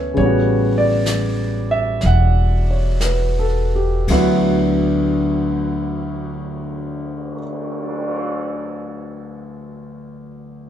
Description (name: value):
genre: jazz ballad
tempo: 55-68 BPM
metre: 4/4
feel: swing 66% on 8ths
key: D major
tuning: A4 = 440 Hz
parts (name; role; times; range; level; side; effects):
- warm concert grand piano; accompaniment; 0.0-10.7 s; D2 to F#5; -20 LUFS; equal; none
- upright bass; bass; 0.0-7.3 s; E1 to D2; -19 LUFS; equal; none
- jazz brush drum kit; drums; 0.1-8.2 s; brushed snare drum, cymbal swell, hi-hat, kick drum, ride cymbal, snare drum; -29 LUFS; equal; none
room: moderate studio reverb, RT60 0.5 s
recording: band playing live in one room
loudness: -16 LUFS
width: side -10 dB against mid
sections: 0.0-4.1 A section; 4.1-8.4 B section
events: slowing down 0.0-4.1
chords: 0.2 A13; 4.1 D69